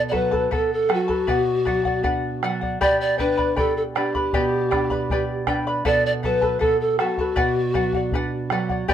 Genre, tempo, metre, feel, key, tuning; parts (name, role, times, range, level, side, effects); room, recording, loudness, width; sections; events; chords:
andean folk, Andean ensemble; 79 BPM; 2/4; straight; B minor; A4 = 440 Hz
charango; accompaniment; 0.0-8.9 s; G4 to B5; -25 LUFS; left 2 dB
nylon-string guitar; accompaniment; 0.0-8.9 s; B2 to D4; -28 LUFS; right 5 dB
breathy mellow polished pan flute; melody; 0.1-8.9 s; F#4 to D5; -22 LUFS; left 1 dB
bombo; percussion; 0.1-8.9 s; -28 LUFS; equal
moderate small room reverb, RT60 0.6 s; minimal, uncompressed stereo recording; -19 LUFS; side -10 dB against mid
0.0-8.9 A section
0.0 D/B (rootless); 1.3 Bm; 2.8 G/B; 5.8 D/B; 7.4 Bm